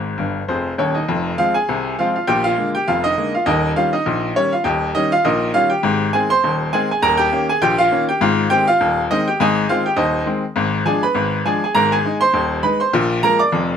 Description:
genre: ragtime piano.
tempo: 101 BPM.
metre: 2/4.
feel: swing 55% on 16ths.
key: Ab major.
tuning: A4 = 440 Hz.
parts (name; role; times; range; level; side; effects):
bright upright piano; solo; 0.0-13.8 s; Eb1 to D6; -15 LUFS; equal; none.
room: light reverb.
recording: close, detailed microphones.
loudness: -15 LUFS.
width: side -8 dB against mid.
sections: 0.0-1.1 A section; 1.1-13.8 A section.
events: upright piano fill 0.2-1.1.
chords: 0.0 Ab; 1.1 Fm; 2.3 Bb7; 3.5 Eb7; 5.8 Ab; 7.0 Eb7; 8.2 Ab; 10.6 Abdim7; 11.8 Ab; 12.9 Bb7.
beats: 0.49 | 1.09 1.68 | 2.27 2.87 | 3.46 4.06 | 4.65 5.24 | 5.84 6.43 | 7.02 7.61 | 8.20 8.80 | 9.39 9.98 | 10.57 11.16 | 11.76 12.35 | 12.94 13.53.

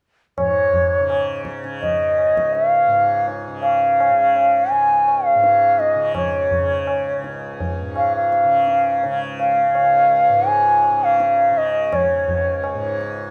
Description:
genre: indian classical, Hindustani.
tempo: 83 BPM.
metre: 4/4.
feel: straight.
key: Db raga hamsadhwani.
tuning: A4 = 439 Hz.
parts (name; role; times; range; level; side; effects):
bansuri; melody; 0.4-13.0 s; Db5 to Ab5; -18 LUFS; equal; none.
tanpura; drone; 0.4-13.3 s; Db2 to Db3; -30 LUFS; equal; none.
tabla; percussion; 0.4-13.3 s; none; -31 LUFS; equal; none.
room: light reverb, small room ambience.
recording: rough home demo mix.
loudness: -18 LUFS.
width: mono.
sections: 0.4-13.3 A section.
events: none.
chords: none.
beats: | 0.38 1.10 1.83 2.55 | 3.27 3.99 4.72 5.44 | 6.16 6.88 7.60 8.32 | 9.05 9.77 10.49 11.21 | 11.93 12.65.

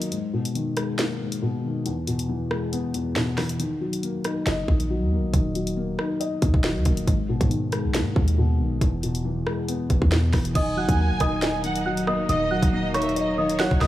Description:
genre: hip hop, drill.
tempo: 138 BPM.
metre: 4/4.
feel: half-time.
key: Eb phrygian.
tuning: A4 = 440 Hz.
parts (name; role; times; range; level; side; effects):
felt-muted upright piano; accompaniment; 0.0-13.9 s; E2 to Eb5; -26 LUFS; left 2 dB; low-pass filter.
drill drum kit; drums; 0.0-13.9 s; crash cymbal, hi-hat, kick drum, rim click, snare drum; -25 LUFS; equal; none.
hard-hitting 808-style bass; bass; 4.5-13.9 s; Db1 to Ab2; -26 LUFS; equal; none.
small celesta; melody; 10.6-13.9 s; Db5 to Gb6; -27 LUFS; right 1 dB; low-pass filter, tape echo.
warm studio violin section; second line; 10.6-13.9 s; Db5 to Ab5; -30 LUFS; right 3 dB; tape echo.
warm studio string section; sustained chords; 10.6-13.9 s; Gb3 to Eb4; -31 LUFS; right 1 dB; none.
room: studio reverb.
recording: small room ambience.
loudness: -21 LUFS.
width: side -14 dB against mid.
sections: 0.0-10.6 A section; 10.6-13.9 B section.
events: break 0.0-3.6, 3.6-4.0.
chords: 0.1 Abmadd9; 1.9 E; 3.6 Ebm; 7.1 Abmadd9; 8.8 E; 10.6 Ebm.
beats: | 0.12 0.55 0.99 1.42 | 1.86 2.29 2.73 3.16 | 3.60 4.03 4.47 4.90 | 5.33 5.77 6.21 6.64 | 7.08 7.51 7.94 8.38 | 8.81 9.25 9.68 10.12 | 10.55 10.99 11.42 11.86 | 12.29 12.73 13.16 13.60.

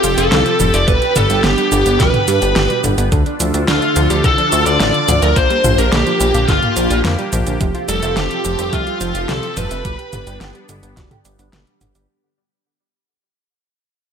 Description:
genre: synthwave.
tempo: 107 BPM.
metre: 4/4.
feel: straight.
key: unclear.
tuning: A4 = 440 Hz.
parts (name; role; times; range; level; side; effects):
bluesy overdriven lead guitar; melody; 0.0-10.4 s; F4 to D5; -18 LUFS; equal; distortion, digital delay.
string machine, violins; second line; 0.0-10.4 s; F4 to D5; -25 LUFS; equal; ensemble chorus, ping-pong delay.
phased analog pad; sustained chords; 0.0-12.1 s; D3 to A4; -23 LUFS; equal; phaser, chorus, sidechain pumping.
analog pluck; arpeggios; 0.0-12.0 s; B2 to G4; -25 LUFS; right 1 dB; chorus, vintage 12-bit sampler grit, ping-pong delay.
mellow electric guitar; riff; 0.0-12.0 s; Bb2 to G4; -26 LUFS; right 3 dB; analog chorus, ping-pong delay.
chorused synth bass; bass; 0.0-12.1 s; F1 to G2; -19 LUFS; equal; sidechain pumping.
pop drum kit; drums; 0.0-12.1 s; cabasa, hi-hat, snare drum, toms; -20 LUFS; right 1 dB; none.
electronic kick drum; drums; 0.9-11.1 s; none; -18 LUFS; equal; overdrive.
room: light reverb, digital ambience.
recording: none.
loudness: -13 LUFS.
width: side -7 dB against mid.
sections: 0.0-12.1 A section.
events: fade-out 6.1-12.1.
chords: 0.0 Fadd9; 0.9 G; 3.1 Dm; 5.4 Bb6; 7.6 Fadd9; 9.8 G.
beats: 0.32 | 0.88 1.44 2.00 2.56 | 3.12 3.68 4.24 4.80 | 5.36 5.92 6.49 7.05 | 7.61 8.17 8.73 9.29 | 9.85 10.41 10.97 11.53.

